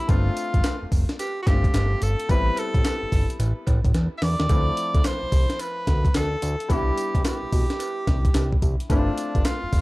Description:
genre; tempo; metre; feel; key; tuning
R&B, new jack swing; 109 BPM; 4/4; swing 64% on 16ths; C major; A4 = 441 Hz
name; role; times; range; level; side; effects
warm tenor saxophone; melody; 0.0-9.8 s; D4 to E5; -28 LUFS; right 1 dB; none
clear baby grand piano; accompaniment; 0.0-9.8 s; F3 to F4; -32 LUFS; left 4 dB; none
fat analog bass; bass; 0.1-9.8 s; F1 to E2; -24 LUFS; equal; none
breakbeat sampler-style drum kit; drums; 0.1-9.8 s; handclaps, hi-hat, kick drum, snare drum, tambourine; -22 LUFS; equal; none
cowbell; percussion; 0.1-9.6 s; none; -42 LUFS; right 6 dB; none
room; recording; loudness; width
small room ambience; dark, warm production; -20 LUFS; side -20 dB against mid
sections
0.0-9.8 A section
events
drum fill 3.9-4.5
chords
0.1 G7sus4; 2.3 Am7; 4.5 Dm7; 6.7 Cmaj7; 8.9 G7sus4

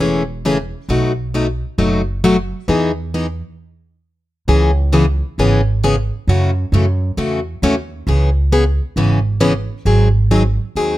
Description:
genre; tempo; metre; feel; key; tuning
acoustic string swing (jazz manouche); 134 BPM; 4/4; swing 64% on 8ths; E major, C# minor from 4.5 s; A4 = 440 Hz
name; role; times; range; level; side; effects
picked plugged-in steel-string acoustic guitar; accompaniment; 0.0-11.0 s; B2 to G#4; -16 LUFS; left 2 dB; none
upright bass; bass; 0.0-11.0 s; E1 to F#2; -17 LUFS; right 1 dB; none
room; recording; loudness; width
light reverb; close, detailed microphones; -14 LUFS; side -15 dB against mid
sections
0.0-4.5 A section; 4.5-11.0 B section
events
stop 3.6-4.5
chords
0.0 Amaj7; 0.9 B7; 2.7 Emaj7; 4.5 C#m7; 6.3 F#m7; 8.1 C#m7; 9.9 G#7

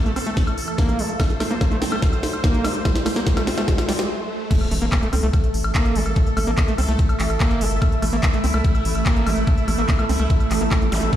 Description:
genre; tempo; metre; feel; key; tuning
psychedelic trance; 145 BPM; 4/4; straight; A phrygian; A4 = 440 Hz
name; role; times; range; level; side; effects
bubbling stepped-filter texture; sustained chords; 0.0-11.2 s; A3 to C5; -31 LUFS; right 2 dB; chorus, built-in reverb, sidechain pumping
riser, impact and zap; sound effects; 0.1-6.2, 10.9-11.0 s; none; -31 LUFS; equal; none
ethereal airy pad; texture; 0.0-11.2 s; A3 to E6; -28 LUFS; right 1 dB; ensemble chorus, built-in reverb, tremolo, sidechain pumping
screaming distorted acid line; riff; 0.1-11.2 s; G3 to E4; -27 LUFS; equal; distortion, chorus, auto-pan, sidechain pumping, digital delay
techno drum kit; drums; 0.1-11.2 s; crash cymbal, handclaps, hi-hat, snare drum, woodblock; -27 LUFS; left 1 dB; none
electronic kick drum; drums; 0.4-11.2 s; none; -19 LUFS; equal; overdrive
round analog bass; bass; 4.7-11.1 s; G1 to C2; -22 LUFS; equal; none
room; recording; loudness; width
moderate digital room reverb, RT60 1.2 s, digital ambience; played on a big sound system in a bare room, stone room reverb; -18 LUFS; side -11 dB against mid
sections
0.0-4.5 A section; 4.5-11.2 B section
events
build-up 0.0-4.5; drum fill 0.0-4.1; riser 0.1-4.5; stop 4.1-4.5; drop 4.5-11.2; impact 4.5-6.2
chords
0.0 A5

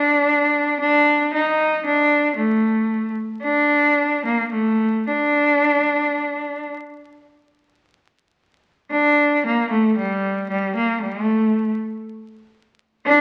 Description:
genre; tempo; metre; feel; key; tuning
japanese traditional, Japanese chamber music; 53-59 BPM; 4/4; rubato; D miyako bushi; A4 = 439 Hz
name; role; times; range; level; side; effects
bright cello; solo; 0.0-13.2 s; G3 to Eb4; -19 LUFS; equal; none
room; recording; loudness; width
wet recital hall reverb, RT60 1.4 s; very old 78 rpm record, vinyl crackle; -19 LUFS; mono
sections
0.0-7.8 A section; 7.8-13.2 B section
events
none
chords
none

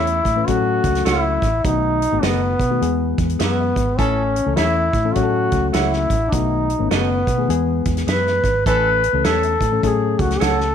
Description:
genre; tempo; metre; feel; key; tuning
uptempo 1960s-style soul; 103 BPM; 4/4; swing 62% on 8ths; A major; A4 = 440 Hz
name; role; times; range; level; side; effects
clear trombone; melody; 0.0-10.7 s; B3 to B4; -20 LUFS; left 1 dB; none
reed electric piano; accompaniment; 0.0-10.7 s; D#3 to B4; -24 LUFS; left 11 dB; none
semi-hollow electric guitar; stabs; 0.0-10.6 s; F#4 to F#5; -26 LUFS; right 13 dB; none
vintage muted fingered electric bass; bass; 0.0-10.7 s; F#1 to B2; -22 LUFS; right 2 dB; none
natural country drum kit; drums; 0.1-10.7 s; hi-hat, kick drum, snare drum; -24 LUFS; right 1 dB; none
warm horn section; second line; 4.0-4.2, 8.7-8.9 s; C#4 to A4; -27 LUFS; right 1 dB; none
room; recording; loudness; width
light reverb, small room ambience; 1960s-style stereo with parts hard left and right; -16 LUFS; side -8 dB against mid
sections
0.0-10.7 A section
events
none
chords
0.5 F#m; 1.6 B7; 2.8 E; 4.0 A; 5.2 F#m; 6.3 B7; 7.5 E; 8.7 A; 9.8 F#m

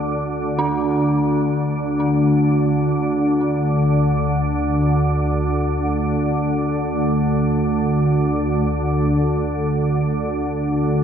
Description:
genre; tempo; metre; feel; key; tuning
dark ambient drone; free time; none; none; unclear; A4 = 440 Hz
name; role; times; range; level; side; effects
dark detuned synth bell; arpeggios; 0.0-6.2 s; D4 to A4; -25 LUFS; equal; chorus, phaser, ping-pong delay
organ-like drone; drone; 0.0-11.0 s; D2 to D3; -17 LUFS; equal; ensemble chorus, built-in reverb
room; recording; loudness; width
wet cathedral reverb, RT60 5.8 s; none; -17 LUFS; side -8 dB against mid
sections
0.0-11.0 A section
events
none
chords
0.0 D5; 2.1 N.C.

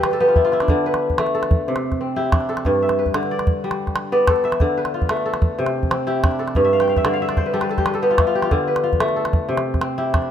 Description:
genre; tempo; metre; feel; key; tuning
west african traditional, West African string and xylophone music; 123 BPM (dotted quarters); 12/8; straight; unclear; A4 = 440 Hz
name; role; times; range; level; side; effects
kora; arpeggios; 0.0-10.3 s; G2 to G5; -18 LUFS; left 1 dB; none
calabash; percussion; 0.0-10.3 s; none; -21 LUFS; right 1 dB; none
room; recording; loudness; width
wet plate reverb, RT60 2.7 s; rough home demo mix; -17 LUFS; side -9 dB against mid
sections
0.7-10.3 A section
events
kora fill 0.0-0.7, 6.6-8.5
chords
0.0 G; 0.7 D5; 1.7 C; 2.7 G; 4.6 Dm; 5.6 C; 6.6 G; 8.5 Dm; 9.5 C

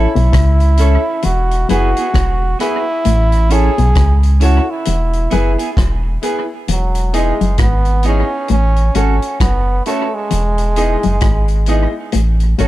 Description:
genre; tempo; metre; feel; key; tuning
roots reggae; 66 BPM; 4/4; swing 60% on 16ths; E major; A4 = 439 Hz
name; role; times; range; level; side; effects
bright trombone; melody; 0.0-12.0 s; F#3 to G#4; -20 LUFS; right 2 dB; tape echo
clean electric guitar; accompaniment; 0.0-12.7 s; B3 to A4; -24 LUFS; right 7 dB; tape echo
warm upright piano; stabs; 0.0-12.7 s; E4 to D#5; -23 LUFS; left 6 dB; none
warm sub bass; bass; 0.0-12.7 s; E1 to C#2; -13 LUFS; equal; none
electric guitar with an envelope filter; riff; 0.2-12.7 s; E2 to C#3; -20 LUFS; left 5 dB; none
vintage drum kit; drums; 0.2-12.7 s; hi-hat, kick drum, rim click; -20 LUFS; equal; analog delay
room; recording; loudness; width
little or no reverb; echo-heavy mix; -12 LUFS; side -15 dB against mid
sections
0.0-6.7 A section; 6.7-12.7 B section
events
none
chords
0.0 A; 1.2 E; 3.1 A; 4.9 E; 6.7 Emaj7; 8.5 A6; 10.3 Emaj7; 12.1 A6

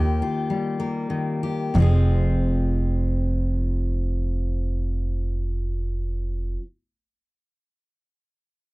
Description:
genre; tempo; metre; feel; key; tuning
acoustic folk duo or small band; 92-107 BPM; 3/4; straight; F minor; A4 = 438 Hz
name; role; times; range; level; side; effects
fingerpicked steel-string acoustic guitar; accompaniment; 0.0-6.7 s; F2 to Ab4; -27 LUFS; left 2 dB; none
upright bass; bass; 0.0-6.5 s; F1 to Eb2; -22 LUFS; right 1 dB; none
room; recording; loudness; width
little or no reverb; dry, close 1970s-style studio recording; -22 LUFS; side -22 dB against mid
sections
0.0-1.7 A section; 1.7-5.7 B section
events
slowing down 0.0-1.7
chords
0.0 Ebadd9; 1.7 Fm

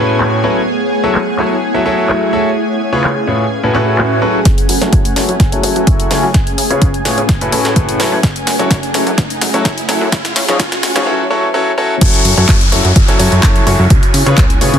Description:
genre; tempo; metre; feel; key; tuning
piano house; 127 BPM; 4/4; straight; F# minor; A4 = 440 Hz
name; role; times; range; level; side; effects
analog string pad; sustained chords; 0.0-14.8 s; F#4 to G#5; -22 LUFS; left 1 dB; ensemble chorus, sidechain pumping
bright concert grand piano; riff; 0.0-14.8 s; A2 to E5; -16 LUFS; left 1 dB; sidechain pumping, low-pass filter, tape echo
granular cloud pad; texture; 0.0-14.8 s; A3 to F#5; -20 LUFS; equal; built-in reverb, sidechain pumping
house drum kit; drums; 0.2-14.8 s; crash cymbal, handclaps, hi-hat, snare drum; -18 LUFS; left 1 dB; high-pass filter on snare, low-pass filter on snare, high-pass filter on hats, low-pass filter on hats, high-pass filter on cymbals, low-pass filter on cymbals
swell, riser and downlifter; sound effects; 3.7-14.8 s; none; -21 LUFS; equal; none
plucky analog bass; bass; 4.5-14.8 s; F#1 to C#3; -17 LUFS; equal; sidechain pumping, high-pass filter
electronic kick drum; drums; 4.5-14.5 s; none; -12 LUFS; equal; none
room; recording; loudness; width
light reverb; dense, heavily limited modern master, high-pass filter; -10 LUFS; side -8 dB against mid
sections
0.0-4.5 A section; 4.5-12.0 B section; 12.0-14.8 C section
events
swell 3.7-4.5; build-up 4.5-12.0; drum fill 4.5-11.1; riser 4.5-11.1; filter sweep on grand piano 4.5-12.0; filter sweep on analog synth pad 4.5-12.0; filter sweep 4.5-12.0; drop 12.0-14.8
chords
0.0 A69; 0.7 F#m7; 2.6 C#7; 3.5 A69; 4.5 F#m7; 6.3 C#7; 7.3 A69; 8.2 F#m7; 10.1 C#7; 11.1 A6; 12.0 F#m7; 13.9 C#7

